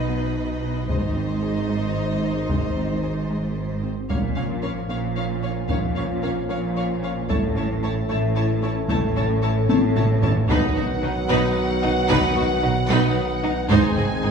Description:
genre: cinematic, hybrid orchestral and electronic film score.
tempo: 75 BPM (dotted quarters).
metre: 6/8.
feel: straight.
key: unclear.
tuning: A4 = 442 Hz.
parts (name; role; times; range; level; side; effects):
rich symphonic violin section; melody; 0.0-14.3 s; D#5 to A5; -32 LUFS; left 2 dB; none.
rich studio violin section; second line; 0.0-14.3 s; D#4 to Db5; -31 LUFS; left 2 dB; none.
rich symphonic viola section; accompaniment; 0.0-14.3 s; Db4 to E4; -29 LUFS; right 1 dB; none.
rich symphonic cello section; bass; 0.0-14.3 s; Ab2 to B2; -28 LUFS; right 3 dB; none.
saturated sub bass; bass; 0.0-14.3 s; Ab1 to B1; -33 LUFS; left 1 dB; none.
warm symphonic double bass section; bass; 0.0-14.3 s; Ab1 to B1; -27 LUFS; right 3 dB; none.
glassy wavetable pluck; arpeggios; 0.1-14.3 s; Ab3 to B4; -33 LUFS; equal; none.
taiko ensemble; drums; 0.9-14.2 s; none; -25 LUFS; left 1 dB; none.
mellow French horn section; sustained chords; 4.1-14.3 s; B3 to B4; -29 LUFS; left 5 dB; none.
warm trombone section; sustained chords; 4.1-14.3 s; Eb3 to Bb3; -28 LUFS; right 2 dB; none.
room: wet recital hall reverb, RT60 1.7 s.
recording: recorded in a church or concert hall, small room reverb.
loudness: -20 LUFS.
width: side -6 dB against mid.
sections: 0.0-4.1 A section; 4.1-14.3 A section.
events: drum fill 9.7-10.5.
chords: 0.0 B; 0.9 Ab; 4.1 Bbm; 7.3 A; 10.5 B; 13.7 Ab.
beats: 0.10 | 0.90 1.70 | 2.50 3.30 | 4.10 4.90 | 5.70 6.50 | 7.30 8.10 | 8.90 9.70 | 10.50 11.30 | 12.10 12.90 | 13.70.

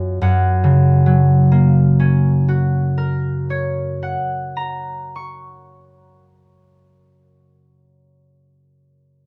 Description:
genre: classical, solo harp piece.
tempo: 37 BPM (dotted quarters).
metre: 6/8.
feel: rubato.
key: F# major.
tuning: A4 = 440 Hz.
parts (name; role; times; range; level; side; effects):
concert harp; solo; 0.0-8.1 s; F#2 to C#6; -17 LUFS; equal; none.
room: moderate large studio reverb, RT60 0.8 s.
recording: dark, warm production.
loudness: -16 LUFS.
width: mono.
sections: 0.2-6.7 A section.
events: none.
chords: 0.2 F#.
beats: | 0.22 1.83 | 3.44 5.07.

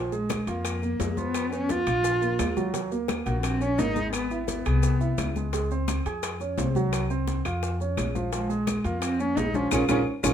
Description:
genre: Afro-Cuban jazz.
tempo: 172 BPM.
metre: 4/4.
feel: straight.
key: Bb minor.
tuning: A4 = 445 Hz.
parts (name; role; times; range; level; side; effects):
warm grand piano; accompaniment; 0.0-10.3 s; F3 to Ab5; -30 LUFS; right 4 dB; none.
upright bass; bass; 0.0-10.3 s; Ab1 to F2; -29 LUFS; left 1 dB; none.
dark cello; melody; 0.1-5.3, 8.3-10.3 s; Ab3 to F4; -28 LUFS; equal; none.
bongos; percussion; 0.1-10.3 s; none; -38 LUFS; left 8 dB; none.
congas; percussion; 0.1-10.3 s; none; -34 LUFS; left 6 dB; none.
maracas; percussion; 0.1-10.3 s; none; -39 LUFS; left 8 dB; none.
claves; percussion; 0.3-10.3 s; none; -38 LUFS; left 5 dB; none.
timbales; percussion; 0.3-10.3 s; none; -36 LUFS; right 5 dB; none.
room: light reverb.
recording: minimal, uncompressed stereo recording.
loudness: -24 LUFS.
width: side -9 dB against mid.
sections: 0.0-10.3 A section.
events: band accent 9.7-10.3.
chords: 0.0 Bb5; 1.3 Db7; 2.0 Bb5; 2.7 Ebm7; 4.1 Abaug; 5.5 Dbmaj7; 6.9 Csus4; 7.6 Bbm; 8.3 Bbm7.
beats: 0.30 0.65 1.00 | 1.35 1.70 2.04 2.39 | 2.74 3.09 3.44 3.79 | 4.14 4.49 4.83 5.18 | 5.53 5.88 6.23 6.58 | 6.93 7.28 7.62 7.97 | 8.32 8.67 9.02 9.37 | 9.72 10.06.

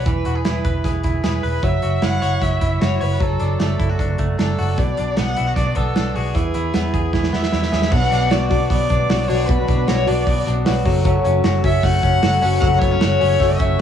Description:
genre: jangly indie pop.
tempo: 153 BPM.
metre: 4/4.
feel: straight.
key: unclear.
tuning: A4 = 440 Hz.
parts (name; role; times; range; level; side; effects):
rich violin; melody; 0.0-13.8 s; G#4 to F#5; -23 LUFS; left 2 dB; cassette tape, tape echo.
direct-recorded clean electric guitar; arpeggios; 0.0-13.8 s; B2 to C#5; -23 LUFS; left 4 dB; tape echo.
vintage muted fingered electric bass; bass; 0.0-13.8 s; E1 to E2; -21 LUFS; right 1 dB; none.
modern studio drum kit; drums; 0.1-13.7 s; crash cymbal, hi-hat, kick drum, snare drum; -21 LUFS; right 1 dB; cassette tape.
fingerpicked twelve-string acoustic guitar; accompaniment; 7.9-13.8 s; F#2 to F#4; -23 LUFS; right 2 dB; none.
room: light reverb.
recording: home recording on cassette.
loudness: -16 LUFS.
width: side -9 dB against mid.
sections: 0.0-7.9 A section; 7.9-13.8 B section.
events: drum fill 7.1-7.9.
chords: 0.1 E; 1.6 F#5; 3.2 D/F#; 4.8 Bm; 6.3 E; 7.9 Bm; 10.9 F#m.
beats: | 0.06 0.46 0.85 1.24 | 1.63 2.03 2.42 2.81 | 3.20 3.60 3.99 4.38 | 4.78 5.17 5.56 5.96 | 6.35 6.74 7.13 7.53 | 7.92 8.31 8.70 9.09 | 9.48 9.88 10.27 10.66 | 11.05 11.44 11.83 12.22 | 12.62 13.01 13.40 13.79.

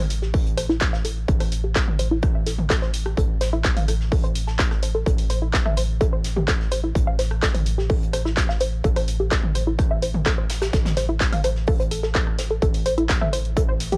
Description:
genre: melodic techno.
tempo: 127 BPM.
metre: 4/4.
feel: straight.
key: A minor.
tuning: A4 = 440 Hz.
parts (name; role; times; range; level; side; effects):
tight sequenced synth; arpeggios; 0.0-14.0 s; E4 to C6; -28 LUFS; equal; chorus, sidechain pumping, analog delay.
tight sequencer bass; bass; 0.0-14.0 s; A1; -29 LUFS; equal; sidechain pumping.
soft brush drum kit; drums; 0.1-13.9 s; hi-hat, snare drum; -39 LUFS; equal; high-pass filter on hats, high-pass filter on snare, high-pass filter on room.
techno drum kit; drums; 0.1-14.0 s; handclaps, hi-hat, rim click, toms; -30 LUFS; equal; sidechain pumping on hats, sidechain pumping on toms.
electronic kick drum; drums; 0.3-13.7 s; none; -25 LUFS; equal; distortion.
room: little or no reverb.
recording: none.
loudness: -22 LUFS.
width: mono.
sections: 0.0-14.0 A section.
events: filter sweep on synth arpeggio sound 0.0-14.0.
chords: 0.0 N.C.; 3.2 F/A (rootless); 5.1 Am; 8.8 N.C.; 10.7 F/A (rootless); 12.6 Am.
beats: 0.34 0.81 | 1.28 1.76 2.23 2.70 | 3.17 3.65 4.12 4.59 | 5.06 5.54 6.01 6.48 | 6.95 7.42 7.90 8.37 | 8.84 9.31 9.79 10.26 | 10.73 11.21 11.68 12.15 | 12.62 13.10 13.57.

